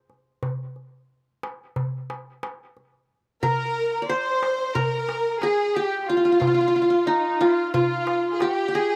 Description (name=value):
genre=Turkish makam ensemble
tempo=180 BPM (eighths)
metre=9/8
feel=straight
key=C makam ussak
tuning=A4 = 439 Hz
part: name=qanun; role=melody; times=0.0-9.0 s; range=Eb4 to D5-30c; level=-24 LUFS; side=equal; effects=none
part: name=darbuka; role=percussion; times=0.1-8.6 s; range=none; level=-32 LUFS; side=equal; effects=none
part: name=clear kamancheh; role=second line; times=3.4-9.0 s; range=Eb4 to C5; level=-34 LUFS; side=equal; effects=slapback echo
part: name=rich studio violin section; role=second line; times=3.4-9.0 s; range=Eb4 to C5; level=-30 LUFS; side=equal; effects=slapback echo
room=light reverb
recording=recorded outdoors, with no room sound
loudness=-23 LUFS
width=mono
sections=0.0-3.4 A section; 3.4-9.0 B section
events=none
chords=none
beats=0.10 | 0.43 0.77 1.10 1.44 1.77 2.10 2.43 2.77 3.10 | 3.43 3.77 4.10 4.43 4.76 5.09 5.43 5.76 6.09 | 6.42 6.76 7.09 7.42 7.75 8.09 8.42 8.75